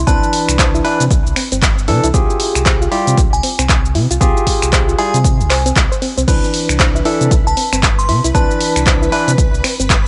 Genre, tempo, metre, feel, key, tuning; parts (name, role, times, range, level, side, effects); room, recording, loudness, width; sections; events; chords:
deep house; 116 BPM; 4/4; swing 60% on 16ths; C major; A4 = 440 Hz
soft round pluck; arpeggios; 0.0-9.8 s; G3 to C5; -26 LUFS; equal; chorus, sidechain pumping, tape echo
sub bass with octave; bass; 0.0-10.1 s; G1 to C3; -20 LUFS; equal; tube saturation, sidechain pumping
glassy synth bell; melody; 0.1-8.8 s; Ab5 to C6; -24 LUFS; equal; chorus, vintage 12-bit sampler grit, tape echo
barky tine electric piano; stabs; 0.1-9.3 s; E3 to B4; -21 LUFS; equal; sidechain pumping, tape echo
electronic kick drum; drums; 0.1-10.0 s; -17 LUFS; equal
punchy analog drum machine; drums; 0.1-10.0 s; crash cymbal, finger snaps, handclaps, hi-hat, shaker; -20 LUFS; equal
string machine, violins; texture; 6.3-10.1 s; B4 to B5; -30 LUFS; equal; ensemble chorus
light reverb; nothing above 10.9 kHz; -14 LUFS; mono
0.0-10.1 A section
0.0 Cmaj9; 2.1 Fmadd9/C; 6.3 Cmaj9